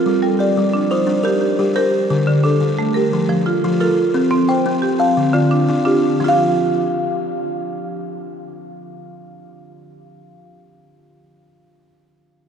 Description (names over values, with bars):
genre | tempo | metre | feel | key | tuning
southern african traditional | 117 BPM (dotted quarters) | 12/8 | straight | unclear | A4 = 440 Hz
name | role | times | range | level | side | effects
buzzing kalimba | arpeggios | 0.0-10.5 s | D3 to G5 | -17 LUFS | left 2 dB | none
marimba with medium hard mallets | arpeggios | 0.0-10.5 s | D3 to A5 | -19 LUFS | right 3 dB | none
room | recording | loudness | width
wet cathedral reverb, RT60 6.3 s | in a vast, echoing space | -14 LUFS | side -7 dB against mid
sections
0.0-6.2 A section; 6.2-10.3 B section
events
none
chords
0.1 Gm; 2.1 D5; 3.1 F; 4.2 C5; 5.2 Dm; 6.2 N.C.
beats
| 0.05 0.56 1.08 1.59 | 2.10 2.61 3.13 3.64 | 4.15 4.66 5.17 5.69 | 6.20 6.71 7.22 7.74 | 8.25 8.76 9.27 9.79